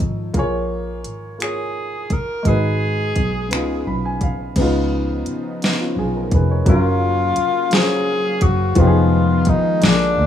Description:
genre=slow six-eight R&B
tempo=57 BPM (dotted quarters)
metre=6/8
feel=straight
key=F# major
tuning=A4 = 442 Hz
part: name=breathy tenor saxophone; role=melody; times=0.0-10.3 s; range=D4 to A#4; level=-21 LUFS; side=left 2 dB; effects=tape echo
part: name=warm baby grand piano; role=accompaniment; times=0.0-10.3 s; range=A#2 to B5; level=-21 LUFS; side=left 1 dB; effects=none
part: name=vintage muted fingered electric bass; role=bass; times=0.0-10.3 s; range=E#1 to D2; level=-20 LUFS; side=equal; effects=none
part: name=smooth R&B drum kit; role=drums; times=0.0-10.0 s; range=crash cymbal, finger snaps, hi-hat, kick drum, snare drum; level=-20 LUFS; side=equal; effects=none
part: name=warm analog pad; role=sustained chords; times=4.6-10.3 s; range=C#3 to E#5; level=-28 LUFS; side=equal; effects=chorus
room=light reverb, digital ambience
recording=rough home demo mix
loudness=-16 LUFS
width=side -10 dB against mid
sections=0.0-4.6 A section; 4.6-6.7 B section; 6.7-10.3 C section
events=grand piano fill 3.5-4.6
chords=0.3 A#m7; 2.5 G#m7; 3.5 C#9; 6.7 F#maj7; 8.8 Fm7b5

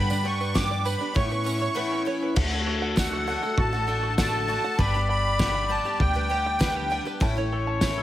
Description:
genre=indie folk with a building arrangement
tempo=99 BPM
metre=4/4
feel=straight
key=D major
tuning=A4 = 440 Hz
part: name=musette accordion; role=melody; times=0.0-7.0 s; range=F#5 to D6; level=-29 LUFS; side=right 2 dB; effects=tape echo
part: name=picked twelve-string acoustic guitar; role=accompaniment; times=0.0-8.0 s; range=G2 to G4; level=-31 LUFS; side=left 3 dB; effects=none
part: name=open-back banjo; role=arpeggios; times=0.0-8.0 s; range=C#4 to A5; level=-34 LUFS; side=right 6 dB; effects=none
part: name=upright bass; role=bass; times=0.0-8.0 s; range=G1 to A2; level=-29 LUFS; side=equal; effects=none
part: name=tambourine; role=percussion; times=0.1-8.0 s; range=none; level=-40 LUFS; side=right 8 dB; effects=none
part: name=cloth-damped thuddy drum kit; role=drums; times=0.6-8.0 s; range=crash cymbal, kick drum, snare drum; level=-26 LUFS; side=equal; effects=none
part: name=clear flugelhorn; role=second line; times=2.4-8.0 s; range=A4 to D5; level=-30 LUFS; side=left 4 dB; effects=none
room=light reverb, small room ambience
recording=none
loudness=-22 LUFS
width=side -13 dB against mid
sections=0.0-2.4 A section; 2.4-8.0 B section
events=none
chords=0.0 G; 1.2 Aadd9; 2.4 D; 4.8 G; 7.2 A

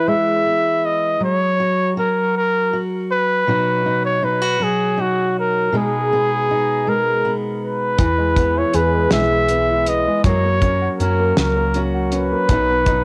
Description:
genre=indie folk with a building arrangement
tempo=53 BPM (dotted quarters)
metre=6/8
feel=straight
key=B major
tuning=A4 = 441 Hz
part: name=warm trumpet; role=melody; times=0.0-13.0 s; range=F#4 to E5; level=-21 LUFS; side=equal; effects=tape echo
part: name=fingerpicked steel-string acoustic guitar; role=accompaniment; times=0.0-13.0 s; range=B2 to G#4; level=-24 LUFS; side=equal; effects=none
part: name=clear upright piano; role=arpeggios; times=8.0-13.0 s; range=E3 to F#4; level=-26 LUFS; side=equal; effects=tape echo
part: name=hollow-body short-scale fingered electric bass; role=bass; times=8.0-13.0 s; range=B1 to F#2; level=-24 LUFS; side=equal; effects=none
part: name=cloth-damped thuddy drum kit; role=drums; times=8.0-13.0 s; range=hi-hat, kick drum, snare drum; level=-22 LUFS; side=equal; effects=cassette tape
room=studio ambience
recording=home recording on cassette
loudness=-18 LUFS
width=mono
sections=0.0-13.0 A section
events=none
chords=0.0 E; 1.2 N.C.; 3.5 B; 5.7 G#m/B; 8.0 E; 10.2 F#; 12.5 B

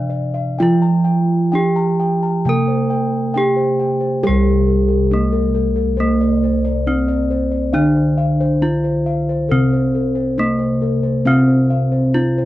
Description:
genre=Javanese gamelan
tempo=68 BPM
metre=4/4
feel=uneven beats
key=C slendro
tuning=A4 = 440 Hz
part: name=gamelan-type bronze metallophone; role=melody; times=0.0-12.5 s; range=Bb3-45c to Bb4-45c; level=-20 LUFS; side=equal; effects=none
part: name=gamelan-type bronze metallophone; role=accompaniment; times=0.0-12.5 s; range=C3 to Bb3-45c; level=-19 LUFS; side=right 2 dB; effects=none
part: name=gamelan-type bossed gongs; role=arpeggios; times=0.0-12.5 s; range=Bb4-45c to Bb5-45c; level=-23 LUFS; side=left 4 dB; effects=none
part: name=gamelan-type bossed gongs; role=bass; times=0.0-12.5 s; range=C2 to G4+25c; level=-20 LUFS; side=left 1 dB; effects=none
room=light reverb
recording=dry, close 1970s-style studio recording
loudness=-14 LUFS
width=side -15 dB against mid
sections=0.0-4.2 A section; 4.2-12.5 B section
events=none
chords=none

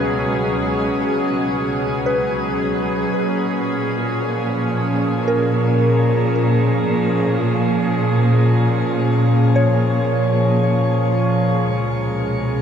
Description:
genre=ambient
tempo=56 BPM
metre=4/4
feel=straight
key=unclear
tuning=A4 = 443 Hz
part: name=evolving wavetable pad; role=sustained chords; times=0.0-12.6 s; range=Bb2 to Ab4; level=-18 LUFS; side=equal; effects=chorus, built-in reverb
part: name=soft synth bell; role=arpeggios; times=0.0-11.7 s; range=Bb4 to Db5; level=-25 LUFS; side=equal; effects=chorus, phaser, ping-pong delay
part: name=clear studio cello section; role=bass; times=0.0-12.6 s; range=Db2 to Bb2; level=-23 LUFS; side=equal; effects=none
part: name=glass harmonica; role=texture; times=0.0-12.6 s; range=Bb5 to Eb6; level=-34 LUFS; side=right 2 dB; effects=none
room=wet shimmer reverb, RT60 8.1 s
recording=cassette tape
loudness=-16 LUFS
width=side -8 dB against mid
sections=0.0-11.7 A section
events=fade-out on glass harmonica 0.0-11.7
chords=0.0 Db7sus4; 3.1 Bbm7; 11.7 Db7sus4

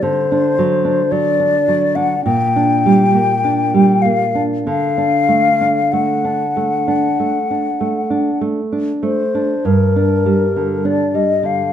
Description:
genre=romantic duo for flute and classical guitar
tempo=47-56 BPM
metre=4/4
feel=rubato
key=G minor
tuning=A4 = 438 Hz
part: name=mellow hollow concert flute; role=melody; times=0.0-11.7 s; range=Bb4 to G5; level=-16 LUFS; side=left 4 dB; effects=none
part: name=nylon-string guitar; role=accompaniment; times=0.0-11.7 s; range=G2 to D4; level=-16 LUFS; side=right 3 dB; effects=none
room=moderate recital hall reverb, RT60 1.6 s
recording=minimal, uncompressed stereo recording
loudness=-13 LUFS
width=side -9 dB against mid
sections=0.0-11.7 A section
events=none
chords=0.0 D; 2.3 Gm/Bb; 4.7 D; 9.7 Gm

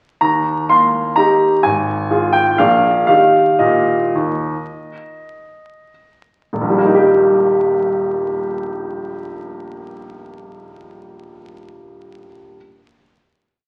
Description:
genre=classical, piano waltz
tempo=89-133 BPM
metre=3/4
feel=rubato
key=Eb major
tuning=A4 = 440 Hz
part: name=clear baby grand piano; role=solo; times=0.2-12.6 s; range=Eb1 to C6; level=-16 LUFS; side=equal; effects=none
room=wet recital hall reverb, RT60 1.6 s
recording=very old 78 rpm record, vinyl crackle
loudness=-15 LUFS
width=mono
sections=0.2-6.5 A section; 6.5-10.4 final chord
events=slowing down 2.3-6.5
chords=0.2 Eb; 1.6 Fm/Ab; 2.6 Bb7; 3.1 Eb

